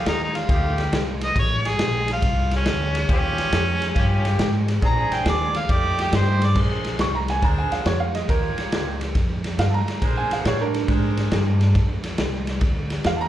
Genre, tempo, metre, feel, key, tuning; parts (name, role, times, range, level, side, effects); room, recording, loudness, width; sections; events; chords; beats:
electric blues shuffle; 138 BPM; 4/4; swing 67% on 8ths; Bb mixolydian; A4 = 440 Hz
mellow harmonica; melody; 0.0-6.6 s; Db4 to Bb5; -25 LUFS; right 1 dB; overdrive, slapback echo, digital delay
warm horn section; stabs; 0.0-11.4 s; A3 to Db5; -29 LUFS; left 1 dB; slapback echo
upright bass; bass; 0.0-13.3 s; A1 to Bb2; -23 LUFS; equal
raw garage drum kit; drums; 0.1-13.2 s; crash cymbal, kick drum, ride cymbal, snare drum; -24 LUFS; equal
clear upright piano; second line; 7.0-13.3 s; D4 to Db6; -26 LUFS; right 5 dB; slapback echo
small room ambience; live gig heard through the venue's PA, club reverb; -19 LUFS; side -12 dB against mid
0.0-6.6 A section; 6.6-13.3 A section
harmonica solo 0.0-6.6; upright piano solo 6.6-13.3
0.0 F9; 3.1 Eb9; 4.8 Bb9; 5.7 F9; 6.6 Bb9; 8.3 Eb9; 10.0 Bb9
0.06 0.49 0.93 | 1.36 1.79 2.23 2.66 | 3.09 3.53 3.96 4.39 | 4.83 5.26 5.69 6.13 | 6.56 6.99 7.43 7.86 | 8.29 8.73 9.16 9.59 | 10.03 10.46 10.89 11.32 | 11.76 12.19 12.62 13.05